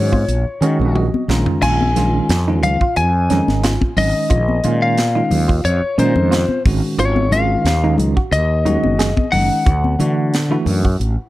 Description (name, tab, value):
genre	electric jazz fusion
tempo	90 BPM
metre	4/4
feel	swing 53% on 16ths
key	unclear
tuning	A4 = 442 Hz
part	lightly driven lead guitar	melody	0.0-11.3 s	C5 to Ab5	-20 LUFS	left 3 dB	none
part	bell-like tine electric piano	accompaniment	0.0-11.1 s	Eb3 to Bb5	-21 LUFS	right 2 dB	medium stereo tremolo
part	clean electric guitar	stabs	0.0-11.1 s	Db4 to Ab4	-24 LUFS	right 3 dB	lush chorus
part	fretless electric bass	bass	0.0-11.2 s	Gb1 to Eb3	-18 LUFS	equal	none
part	crisp fusion drum kit	drums	0.1-11.2 s	crash cymbal, hi-hat, kick drum, snare drum, toms	-21 LUFS	equal	none
part	congas	percussion	0.1-10.8 s	none	-22 LUFS	left 3 dB	none
room	small room reverb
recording	dark, warm production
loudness	-14 LUFS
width	side -16 dB against mid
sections	0.0-11.3 A section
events	tine electric piano fill 0.6-1.6; drum fill 1.0-1.6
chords	0.0 Ebm11; 1.3 Bbm7; 6.7 Ab7sus4; 9.7 Dadd9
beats	0.29 0.96 | 1.63 2.30 2.97 3.64 | 4.31 4.98 5.65 6.32 | 6.99 7.66 8.33 9.00 | 9.67 10.34 11.01